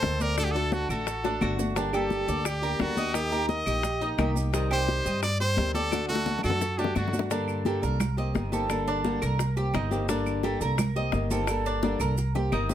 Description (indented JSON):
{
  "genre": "latin, Cuban son and guajira",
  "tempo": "173 BPM",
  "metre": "4/4",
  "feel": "straight",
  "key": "G minor from 7.3 s",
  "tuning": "A4 = 442 Hz",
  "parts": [
    { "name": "brilliant trumpet", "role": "melody", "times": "0.0-7.2 s", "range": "F#4 to Eb5", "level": "-30 LUFS", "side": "equal", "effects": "plate reverb" },
    { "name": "flamenco guitar", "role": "accompaniment", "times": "0.0-12.7 s", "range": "C3 to A4", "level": "-31 LUFS", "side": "left 2 dB", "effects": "none" },
    { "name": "Cuban tres", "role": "arpeggios", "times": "0.0-12.7 s", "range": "D4 to Eb5", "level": "-32 LUFS", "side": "right 4 dB", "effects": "none" },
    { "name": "upright bass", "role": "bass", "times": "0.0-12.7 s", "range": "G1 to G2", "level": "-30 LUFS", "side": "right 1 dB", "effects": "none" },
    { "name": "bongos", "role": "percussion", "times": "0.0-12.7 s", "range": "none", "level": "-34 LUFS", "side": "left 8 dB", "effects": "none" },
    { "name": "congas", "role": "percussion", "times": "0.0-12.7 s", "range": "none", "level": "-34 LUFS", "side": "left 2 dB", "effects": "none" },
    { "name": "maracas", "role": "percussion", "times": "0.0-12.7 s", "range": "none", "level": "-43 LUFS", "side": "right 8 dB", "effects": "none" },
    { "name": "claves", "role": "percussion", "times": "0.4-12.7 s", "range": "none", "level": "-40 LUFS", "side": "left 1 dB", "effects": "none" }
  ],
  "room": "light reverb",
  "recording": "close, detailed microphones",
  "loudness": "-25 LUFS",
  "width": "side -10 dB against mid",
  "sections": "0.0-7.3 A section; 7.3-12.7 B section",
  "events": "drum fill 1.2-1.8, 5.9-7.3, 11.8-12.7",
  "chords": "0.4 D; 1.8 Gm; 3.1 Eb; 4.5 Cm; 5.9 D; 7.3 Gmadd9; 8.0 Cm7; 8.7 Gmadd9; 9.4 Cm7; 10.1 Gmadd9; 10.8 Cm7; 11.5 Gmadd9; 12.2 Cm7"
}